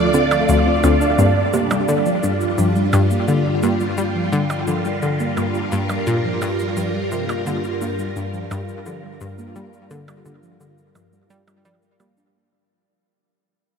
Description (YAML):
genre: ambient, sequencer-driven space music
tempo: 86 BPM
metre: 4/4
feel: straight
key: G minor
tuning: A4 = 439 Hz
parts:
  - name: phased string machine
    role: sustained chords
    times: 0.0-12.3 s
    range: G3 to D5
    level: -21 LUFS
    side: right 1 dB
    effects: ensemble chorus, phaser
  - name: soft round pluck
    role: arpeggios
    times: 0.0-12.3 s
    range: F3 to D4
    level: -24 LUFS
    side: right 2 dB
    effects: chorus, auto-pan, tape echo
  - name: analog pluck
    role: riff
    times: 0.0-12.3 s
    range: D2 to G3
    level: -21 LUFS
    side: left 2 dB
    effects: chorus, tape echo
  - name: analog drone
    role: bass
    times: 0.2-12.3 s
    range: D2 to G2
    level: -33 LUFS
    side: equal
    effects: chorus
  - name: cabasa and percussion blips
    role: percussion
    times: 0.1-12.3 s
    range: none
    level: -30 LUFS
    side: right 3 dB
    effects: tape echo
room: wet huge ambient reverb, RT60 7.8 s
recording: none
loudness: -17 LUFS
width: side -6 dB against mid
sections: 0.0-12.3 A section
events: fade-out 1.2-12.3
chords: 0.0 Dm7; 1.2 Gm7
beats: 0.49 | 1.19 1.88 2.58 3.28 | 3.98 4.67 5.37 6.07 | 6.77 7.46 8.16 8.86 | 9.56 10.26 10.95 11.65